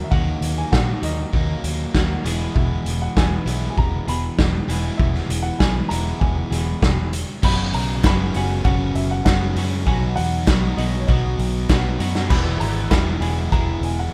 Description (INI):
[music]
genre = indie rock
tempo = 98 BPM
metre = 4/4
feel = straight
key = unclear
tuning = A4 = 440 Hz
[part]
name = warm upright piano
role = melody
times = 0.0-14.1 s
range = C#5 to B5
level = -33 LUFS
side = equal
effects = analog delay
[part]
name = crunchy overdriven guitar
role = riff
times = 0.0-14.1 s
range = F#2 to E4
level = -30 LUFS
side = equal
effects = none
[part]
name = overdriven semi-hollow guitar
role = riff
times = 0.0-14.1 s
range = E2 to G#4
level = -32 LUFS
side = equal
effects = analog chorus
[part]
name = vintage muted fingered electric bass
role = bass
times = 0.1-14.1 s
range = E1 to A#2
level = -26 LUFS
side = equal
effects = none
[part]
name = raw garage drum kit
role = drums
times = 0.1-14.0 s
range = crash cymbal, hi-hat, kick drum, snare drum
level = -23 LUFS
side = equal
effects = none
[part]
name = group handclap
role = percussion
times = 8.0-13.7 s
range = none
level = -40 LUFS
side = equal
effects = none
[sound]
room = little or no reverb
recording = rough home demo mix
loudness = -20 LUFS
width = mono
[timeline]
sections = 0.0-7.4 A section; 7.4-14.1 B section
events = none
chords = 0.0 D#m; 2.3 E; 7.4 F#sus4; 9.9 B; 12.3 E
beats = | 0.12 0.73 1.34 1.95 | 2.56 3.17 3.78 4.39 | 5.00 5.61 6.21 6.82 | 7.43 8.04 8.65 9.26 | 9.87 10.48 11.09 11.70 | 12.31 12.92 13.53